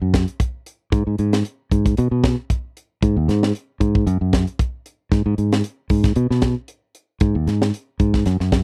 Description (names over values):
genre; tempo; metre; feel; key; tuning
afrobeat; 114 BPM; 4/4; swing 54% on 16ths; G# minor; A4 = 440 Hz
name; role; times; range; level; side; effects
fingered electric bass; bass; 0.0-8.6 s; D#2 to B2; -20 LUFS; equal; none
tight funk drum kit; drums; 0.1-8.6 s; hi-hat, kick drum, snare drum; -22 LUFS; equal; none
room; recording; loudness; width
little or no reverb; dry, close 1970s-style studio recording; -20 LUFS; mono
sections
0.0-8.6 A section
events
none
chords
none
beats
0.40 | 0.92 1.45 1.97 2.50 | 3.02 3.55 4.07 4.60 | 5.12 5.65 6.17 6.70 | 7.22 7.74 8.27